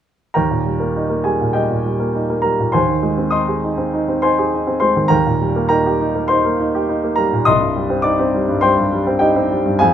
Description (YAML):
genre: classical, virtuoso piano study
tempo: 102 BPM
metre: 4/4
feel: rubato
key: Eb major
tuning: A4 = 440 Hz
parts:
  - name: warm grand piano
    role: solo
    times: 0.3-9.9 s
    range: C2 to Eb6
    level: -14 LUFS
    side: equal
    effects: none
room: moderate studio reverb, RT60 0.8 s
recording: minimal, uncompressed stereo recording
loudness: -15 LUFS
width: side -9 dB against mid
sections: 0.4-9.9 A section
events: none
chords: 0.4 Eb; 2.7 Ab/Eb; 5.1 Eb; 7.5 Cm